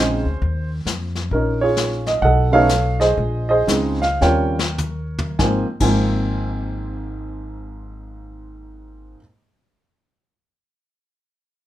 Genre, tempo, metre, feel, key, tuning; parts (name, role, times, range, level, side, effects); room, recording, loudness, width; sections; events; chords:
jazz piano trio; 94-134 BPM; 4/4; swing 65% on 8ths; Ab major; A4 = 440 Hz
warm upright piano; melody; 0.0-9.2 s; Ab2 to Ab5; -19 LUFS; right 2 dB
upright bass; bass; 0.0-9.1 s; Ab1 to F2; -22 LUFS; left 1 dB
vintage brush drum kit; drums; 0.4-5.9 s; brushed snare drum, crash cymbal, hi-hat, kick drum, snare drum, toms; -25 LUFS; left 3 dB
light reverb; minimal, uncompressed stereo recording; -17 LUFS; side -13 dB against mid
0.0-5.4 A section; 5.4-10.5 B section
slowing down 1.3-5.4; drum fill 4.2-5.4
0.4 Ebsus2; 1.3 Bbm7; 2.2 B9; 3.2 Bbm11; 4.2 Eb13; 5.4 Ab69